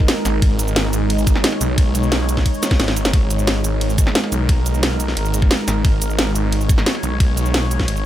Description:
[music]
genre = dark technical drum and bass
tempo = 177 BPM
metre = 4/4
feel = straight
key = G# minor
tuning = A4 = 440 Hz
[part]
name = deep dark ambient pad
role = sustained chords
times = 0.0-8.1 s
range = G#3 to C#5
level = -23 LUFS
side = right 1 dB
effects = chorus, built-in reverb, sidechain pumping
[part]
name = snarling distorted saw bass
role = bass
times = 0.0-8.1 s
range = G#1 to B1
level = -20 LUFS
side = equal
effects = distortion, tube saturation
[part]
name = electronic kick drum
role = drums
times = 0.0-7.9 s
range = none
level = -16 LUFS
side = equal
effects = small room ambience
[part]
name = drum and bass drum kit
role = drums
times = 0.1-8.0 s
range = hi-hat, ride cymbal, shaker, snare drum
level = -21 LUFS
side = equal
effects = small room ambience
[sound]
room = little or no reverb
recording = none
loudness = -15 LUFS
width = side -12 dB against mid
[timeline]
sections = 0.0-8.1 A section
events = drum fill 2.6-3.1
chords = 0.0 G#m

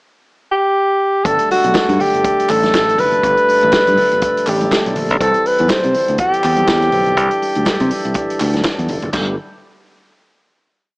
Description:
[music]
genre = disco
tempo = 122 BPM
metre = 4/4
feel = swing 56% on 16ths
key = G major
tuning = A4 = 440 Hz
[part]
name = breathy alto saxophone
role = melody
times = 0.5-8.6 s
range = F#4 to C5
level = -14 LUFS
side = equal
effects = none
[part]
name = vintage drum kit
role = drums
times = 1.2-9.3 s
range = crash cymbal, hi-hat, kick drum, snare drum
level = -21 LUFS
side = equal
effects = none
[part]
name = percussive tonewheel organ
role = sustained chords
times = 1.3-9.4 s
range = D3 to A4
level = -22 LUFS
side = equal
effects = slow rotary speaker
[part]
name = modern bright fingered electric bass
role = bass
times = 1.3-9.4 s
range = F1 to C3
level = -19 LUFS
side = equal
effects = none
[part]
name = congas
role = percussion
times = 1.5-9.4 s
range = none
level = -27 LUFS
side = left 1 dB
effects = none
[part]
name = group handclap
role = percussion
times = 1.7-9.4 s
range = none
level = -27 LUFS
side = right 1 dB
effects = none
[sound]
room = light reverb, small room ambience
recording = small speaker sound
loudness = -12 LUFS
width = side -30 dB against mid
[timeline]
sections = 0.0-1.3 pickup bar; 1.3-9.1 verse; 9.1-11.0 final chord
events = none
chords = 0.0 N.C.; 1.3 Gadd9; 5.2 C; 9.1 Gadd9

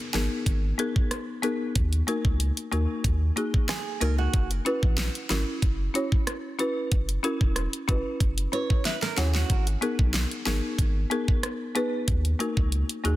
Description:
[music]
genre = dancehall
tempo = 93 BPM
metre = 4/4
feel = straight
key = G# minor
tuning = A4 = 437 Hz
[part]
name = folk marimba with medium mallets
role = accompaniment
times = 0.1-13.2 s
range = A#3 to F#5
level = -29 LUFS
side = left 1 dB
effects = sidechain pumping
[part]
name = warm sub bass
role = bass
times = 0.1-13.2 s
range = E1 to D#2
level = -26 LUFS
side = equal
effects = none
[part]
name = pop drum kit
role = drums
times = 0.1-13.2 s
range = hi-hat, kick drum, rim click, snare drum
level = -26 LUFS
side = equal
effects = none
[part]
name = flamenco guitar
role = arpeggios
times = 3.7-4.5, 8.5-9.7 s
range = F#4 to C#5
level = -34 LUFS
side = right 10 dB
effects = digital delay
[sound]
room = digital ambience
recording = dense, heavily limited modern master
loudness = -24 LUFS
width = side -16 dB against mid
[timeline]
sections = 0.0-13.2 A section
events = marimba fill 8.2-9.5; drum fill 8.9-9.5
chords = 0.0 G#madd9; 1.8 D#m; 4.3 F#7sus4; 9.5 G#madd9; 12.1 D#m

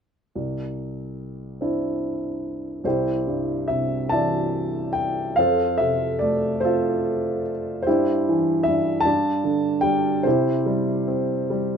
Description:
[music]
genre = classical, lyrical solo piano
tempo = 49 BPM (dotted quarters)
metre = 6/8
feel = uneven beats, rubato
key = C major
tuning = A4 = 441 Hz
[part]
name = warm upright piano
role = solo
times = 0.4-11.8 s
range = C2 to A5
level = -21 LUFS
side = equal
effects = none
[sound]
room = light reverb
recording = minimal, uncompressed stereo recording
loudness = -20 LUFS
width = side -7 dB against mid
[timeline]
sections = 0.4-2.9 A section; 2.9-11.8 B section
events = upright piano fill 11.5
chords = 0.4 Cadd9; 5.4 F; 7.9 C/G; 9.1 G5; 10.3 C

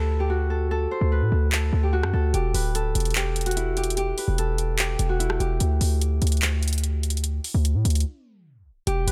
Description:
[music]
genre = hip hop, trap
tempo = 147 BPM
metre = 4/4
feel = half-time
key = unclear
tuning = A4 = 440 Hz
[part]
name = Celtic harp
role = melody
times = 0.0-9.1 s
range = E4 to C5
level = -31 LUFS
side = equal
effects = delay
[part]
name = hard-hitting 808-style bass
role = bass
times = 0.0-9.1 s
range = D1 to A2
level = -25 LUFS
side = equal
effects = none
[part]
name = trap drum kit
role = drums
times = 1.5-9.1 s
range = handclaps, hi-hat, rim click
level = -30 LUFS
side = equal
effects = none
[sound]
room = digital ambience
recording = tape stop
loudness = -24 LUFS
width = mono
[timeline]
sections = 0.0-8.9 A section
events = break 0.0-2.3, 8.1-8.9; tape stop 8.1-8.9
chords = 0.0 D; 2.3 D69; 5.6 D5

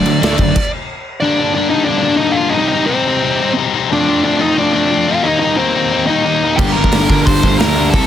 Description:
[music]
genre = punk rock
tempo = 179 BPM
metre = 4/4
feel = straight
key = G minor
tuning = A4 = 440 Hz
[part]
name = dark smooth lead guitar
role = melody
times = 0.0-8.1 s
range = C4 to C6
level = -16 LUFS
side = right 2 dB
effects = overdrive
[part]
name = crunchy overdriven guitar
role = riff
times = 0.0-0.6, 6.6-8.1 s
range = G2 to Eb4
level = -19 LUFS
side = right 11 dB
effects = none
[part]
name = distorted electric guitar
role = riff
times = 0.0-8.1 s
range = G2 to F4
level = -15 LUFS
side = left 7 dB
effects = distortion
[part]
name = overdriven electric guitar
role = riff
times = 0.0-0.6, 6.6-8.1 s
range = G2 to D4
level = -22 LUFS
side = right 1 dB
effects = none
[part]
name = fuzz picked electric bass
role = bass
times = 0.0-0.5, 6.6-8.1 s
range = F#1 to D2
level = -18 LUFS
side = equal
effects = overdrive
[part]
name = big rock drum kit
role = drums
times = 0.1-0.6, 6.6-8.0 s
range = crash cymbal, hi-hat, kick drum, snare drum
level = -16 LUFS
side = equal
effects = none
[sound]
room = little or no reverb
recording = dense, heavily limited modern master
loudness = -12 LUFS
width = side -10 dB against mid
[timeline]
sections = 0.0-1.2 A section; 1.2-8.1 B section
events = lead electric guitar solo 0.0-1.2; stop 0.6-1.2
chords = 0.0 D; 1.2 Gm; 2.6 Cm; 3.9 F; 5.3 Eb; 6.6 Gm

